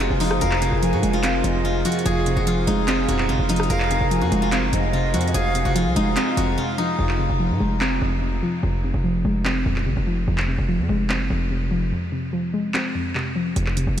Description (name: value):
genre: hip hop, trap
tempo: 146 BPM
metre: 4/4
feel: half-time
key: F phrygian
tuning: A4 = 440 Hz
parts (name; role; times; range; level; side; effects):
- steel-string zither; melody; 0.0-9.5 s; Eb4 to Bb4; -26 LUFS; left 2 dB; tape echo
- soft round pluck; accompaniment; 0.0-14.0 s; F2 to C4; -24 LUFS; equal; chorus, low-pass filter
- deep dark ambient pad; sustained chords; 0.0-7.0 s; F4 to Ab5; -30 LUFS; right 1 dB; chorus, built-in reverb
- distorted 808-style bass; bass; 0.0-14.0 s; Eb1 to Ab2; -23 LUFS; equal; distortion
- trap drum kit; drums; 0.0-14.0 s; handclaps, hi-hat, rim click; -29 LUFS; right 1 dB; none
- jazz flute; second line; 0.4-5.7 s; Eb5 to Ab5; -31 LUFS; right 3 dB; tape echo
room: moderate huge ambient reverb, RT60 7.5 s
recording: dreamy mix soaked in reverb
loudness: -19 LUFS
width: side -10 dB against mid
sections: 0.0-7.0 A section; 7.0-14.0 B section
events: break 6.6-7.0, 7.0-13.6; filter sweep on synth pluck 7.0-14.0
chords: 0.0 Fm